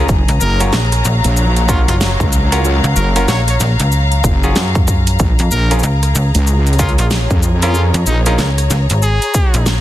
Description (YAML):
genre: glitch hop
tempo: 94 BPM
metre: 4/4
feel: swing 61% on 16ths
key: Bb minor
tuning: A4 = 440 Hz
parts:
  - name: bright clav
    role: stabs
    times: 0.0-8.5 s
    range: Db4 to Bb4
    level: -22 LUFS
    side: equal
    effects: vintage 12-bit sampler grit, sidechain pumping, digital delay
  - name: wobble bass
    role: bass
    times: 0.0-8.4 s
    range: Gb1 to F2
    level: -14 LUFS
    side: equal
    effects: chorus, overdrive
  - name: rich symphonic string section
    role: texture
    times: 0.0-9.8 s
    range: Gb3 to Bb5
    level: -22 LUFS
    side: left 3 dB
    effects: sidechain pumping
  - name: dubstep drum kit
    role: drums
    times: 0.1-9.8 s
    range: hi-hat, rim click, shaker, snare drum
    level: -20 LUFS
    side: equal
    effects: studio reverb
  - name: electronic kick drum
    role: drums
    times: 0.1-9.5 s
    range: none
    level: -15 LUFS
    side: equal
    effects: studio reverb
  - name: slap-like FM bass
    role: bass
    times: 0.3-9.8 s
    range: Gb1 to Gb2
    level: -14 LUFS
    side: equal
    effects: none
  - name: brilliant trumpet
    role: melody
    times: 0.4-9.7 s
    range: Eb4 to Db5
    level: -23 LUFS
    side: equal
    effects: digital delay
room: little or no reverb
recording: dense, heavily limited modern master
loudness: -11 LUFS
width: side -14 dB against mid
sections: 0.0-9.8 A section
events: none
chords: 0.1 Gbmaj7; 5.2 Bbm7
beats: | 0.09 0.73 1.37 2.01 | 2.64 3.28 3.92 4.56 | 5.20 5.83 6.47 7.11 | 7.75 8.39 9.03 9.66